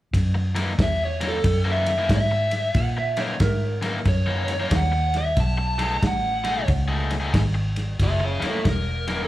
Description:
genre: electric blues shuffle.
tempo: 92 BPM.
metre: 4/4.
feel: swing 64% on 8ths.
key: F# mixolydian.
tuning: A4 = 441 Hz.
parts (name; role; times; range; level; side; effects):
vintage muted fingered electric bass; bass; 0.1-9.3 s; E1 to A#2; -24 LUFS; equal; none.
warm soul drum kit; drums; 0.1-9.2 s; kick drum, ride cymbal, snare drum; -26 LUFS; equal; none.
cranked stack guitar; riff; 0.3-9.2 s; F#2 to G#4; -29 LUFS; left 3 dB; overdrive.
dark smooth lead guitar; melody; 0.8-9.3 s; E4 to A5; -25 LUFS; equal; overdrive, slapback echo, analog delay.
electric slide guitar; second line; 2.8-3.9 s; A#4 to F#5; -29 LUFS; right 3 dB; slapback echo, analog delay.
room: light reverb.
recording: live gig heard through the venue's PA, club reverb.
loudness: -20 LUFS.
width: side -15 dB against mid.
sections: 0.1-9.3 A section.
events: none.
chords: 0.1 F#13; 5.4 B13; 8.0 F#13.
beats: | 0.14 0.79 1.44 2.10 | 2.75 3.41 4.06 4.72 | 5.37 6.03 6.68 7.34 | 7.99 8.65.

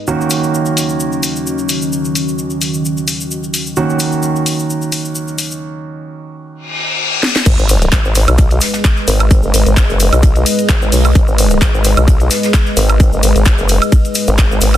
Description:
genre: bass house.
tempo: 130 BPM.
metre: 4/4.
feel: swing 55% on 16ths.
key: G# minor.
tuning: A4 = 439 Hz.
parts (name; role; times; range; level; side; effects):
dark analog pad; sustained chords; 0.0-14.8 s; D#3 to D#5; -19 LUFS; equal; chorus, sidechain pumping.
warm grand piano; stabs; 0.0-7.4 s; D#3 to F#4; -18 LUFS; right 3 dB; vintage 12-bit sampler grit, sidechain pumping, low-pass filter, tape echo.
cabasa; percussion; 0.1-14.8 s; none; -24 LUFS; left 2 dB; none.
garage drum kit; drums; 0.3-14.8 s; crash cymbal, handclaps, hi-hat, ride cymbal, snare drum, woodblock; -18 LUFS; equal; low-pass filter on hats, low-pass filter on snare, low-pass filter on cymbals, low-pass filter on perc.
reverse cymbal and impact; sound effects; 6.6-9.3 s; none; -18 LUFS; left 3 dB; none.
vowel-sweep wobble bass; bass; 7.5-14.8 s; F#1 to B1; -12 LUFS; equal; chorus, sidechain pumping.
electronic kick drum; drums; 7.5-14.5 s; none; -11 LUFS; equal; none.
soft brush drum kit; drums; 7.5-14.7 s; hi-hat, snare drum; -27 LUFS; right 3 dB; none.
room: light reverb, small room ambience.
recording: dense, heavily limited modern master.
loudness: -11 LUFS.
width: side -12 dB against mid.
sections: 0.0-7.5 A section; 7.5-14.8 B section.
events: filter sweep on drum 0.0-7.5; reverse cymbal 6.6-7.5; drum fill 7.2; drop 7.5-14.8; impact 7.5-9.3.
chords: 0.1 D#m7; 7.5 G#m.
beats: | 0.08 0.54 1.00 1.46 | 1.92 2.38 2.85 3.31 | 3.77 4.23 4.69 5.15 | 5.62 6.08 6.54 7.00 | 7.46 7.92 8.38 8.85 | 9.31 9.77 10.23 10.69 | 11.15 11.62 12.08 12.54 | 13.00 13.46 13.92 14.38.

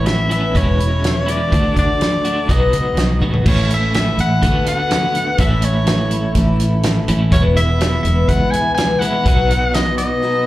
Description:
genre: folk rock and heartland rock.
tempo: 124 BPM.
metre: 4/4.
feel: straight.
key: unclear.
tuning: A4 = 440 Hz.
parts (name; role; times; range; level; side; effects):
bright soprano saxophone; melody; 0.0-10.5 s; C#5 to G#5; -20 LUFS; left 1 dB; slapback echo.
picked twelve-string acoustic guitar; accompaniment; 0.0-10.5 s; E2 to F#4; -23 LUFS; left 3 dB; slapback echo.
electric guitar at the edge of break-up; riff; 0.0-10.5 s; E2 to F#4; -22 LUFS; right 2 dB; tremolo.
fingered electric bass; bass; 0.0-10.1 s; E1 to D2; -18 LUFS; equal; none.
natural country drum kit; drums; 0.1-10.1 s; crash cymbal, hi-hat, kick drum, snare drum, toms; -19 LUFS; equal; none.
room: small room ambience.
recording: live gig heard through the venue's PA, club reverb.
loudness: -13 LUFS.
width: side -15 dB against mid.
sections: 0.0-3.5 A section; 3.5-10.5 B section.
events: drum fill 3.2.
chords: 0.0 Aadd9; 0.5 E6; 1.5 D; 2.5 B; 3.5 A; 4.4 D6; 5.4 A; 7.3 E; 9.3 B.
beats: 0.06 0.54 1.03 | 1.52 2.00 2.49 2.98 | 3.46 3.95 4.43 4.92 | 5.40 5.88 6.37 6.85 | 7.33 7.82 8.30 8.78 | 9.26 9.74 10.22.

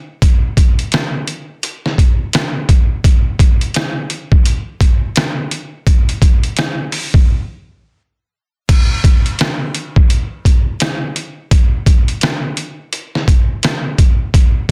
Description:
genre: hip hop.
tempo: 85 BPM.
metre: 4/4.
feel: swing 61% on 16ths.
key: none.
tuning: none.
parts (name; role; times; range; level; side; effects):
trip hop sampler-style drum kit; drums; 0.2-14.7 s; crash cymbal, hi-hat, kick drum, rim click, snare drum; -14 LUFS; equal; none.
room: little or no reverb.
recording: dense, heavily limited modern master.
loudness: -14 LUFS.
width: mono.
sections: 0.0-8.7 A section; 8.7-14.7 B section.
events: break 7.3-8.7.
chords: none.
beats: | 0.22 0.93 1.63 2.34 | 3.04 3.75 4.46 5.16 | 5.87 6.57 7.28 7.98 | 8.69 9.40 10.10 10.81 | 11.51 12.22 12.93 13.63 | 14.34.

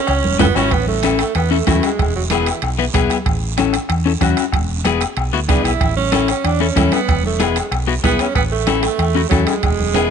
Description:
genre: latin, cumbia.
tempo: 188 BPM.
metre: 4/4.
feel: straight.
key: A major.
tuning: A4 = 439 Hz.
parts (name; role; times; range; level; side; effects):
bright tenor saxophone; second line; 0.0-2.6, 5.5-10.1 s; E3 to E4; -21 LUFS; right 8 dB; none.
hollow-body short-scale fingered electric bass; bass; 0.1-10.1 s; E1 to E2; -20 LUFS; equal; none.
bombo; percussion; 0.1-10.1 s; none; -21 LUFS; equal; none.
congas; percussion; 0.1-10.1 s; none; -27 LUFS; right 2 dB; none.
cowbell and timbales; percussion; 0.1-10.0 s; none; -25 LUFS; right 10 dB; none.
guiro; percussion; 0.1-10.1 s; none; -31 LUFS; right 9 dB; none.
electric guitar at the edge of break-up; accompaniment; 0.4-10.1 s; B3 to B4; -20 LUFS; left 9 dB; none.
room: light reverb.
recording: nothing above 10.3 kHz.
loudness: -14 LUFS.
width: side -7 dB against mid.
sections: 0.7-10.1 A section.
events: drum fill 0.0-0.7, 9.9; tenor saxophone solo 0.7-10.1.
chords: 0.0 A (rootless); 0.7 A; 2.0 E; 3.3 A; 4.5 E; 5.8 A; 7.1 E; 8.4 A.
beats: 0.08 0.40 | 0.72 1.03 1.35 1.67 | 1.99 2.31 2.62 2.94 | 3.26 3.58 3.90 4.22 | 4.53 4.85 5.17 5.49 | 5.81 6.13 6.44 6.76 | 7.08 7.40 7.72 8.04 | 8.36 8.68 8.99 9.31 | 9.63 9.95.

